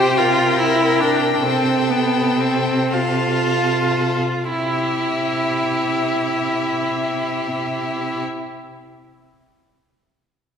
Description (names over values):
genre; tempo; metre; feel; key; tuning
classical, slow romantic movement for string quartet; 36-51 BPM (dotted quarters); 6/8; rubato; C major; A4 = 440 Hz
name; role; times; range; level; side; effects
clear violin; melody; 0.0-8.2 s; E5 to G5; -25 LUFS; left 6 dB; none
bright violin; second line; 0.0-8.2 s; G4 to C5; -25 LUFS; left 3 dB; none
clear viola; accompaniment; 0.0-8.2 s; B3 to G4; -20 LUFS; right 1 dB; none
clear cello; bass; 0.0-8.2 s; C3; -24 LUFS; right 2 dB; none
room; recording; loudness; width
wet concert hall reverb, RT60 2.0 s; recorded in a church or concert hall; -17 LUFS; side -7 dB against mid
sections
0.0-4.5 A section; 4.5-7.5 B section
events
slowing down 0.0-4.5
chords
0.0 C5; 1.4 F/C; 4.5 C